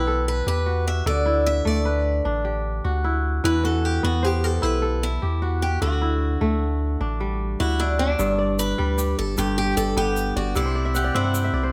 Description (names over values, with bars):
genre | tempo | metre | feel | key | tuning
west african traditional, West African string and xylophone music | 101 BPM (dotted quarters) | 12/8 | straight | G major | A4 = 438 Hz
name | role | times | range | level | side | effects
picked swing-style acoustic guitar | melody | 0.0-11.7 s | D4 to E5 | -28 LUFS | equal | none
kora | arpeggios | 0.0-11.7 s | G2 to G5 | -27 LUFS | equal | none
punchy sub bass | bass | 0.0-11.7 s | G1 to G2 | -26 LUFS | equal | none
tube shaker | percussion | 8.2-11.4 s | none | -38 LUFS | equal | none
room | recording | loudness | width
moderate recital hall reverb, RT60 1.5 s | close, detailed microphones | -23 LUFS | mono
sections
0.0-8.2 A section; 8.2-11.7 B section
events
kora fill 10.7-11.7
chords
0.0 Em; 1.1 D; 3.4 Em; 5.8 D; 8.2 G; 10.6 C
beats
0.47 | 1.06 1.66 2.25 2.85 | 3.44 4.04 4.63 5.23 | 5.82 6.41 7.01 7.60 | 8.19 8.78 9.38 9.97 | 10.56 11.15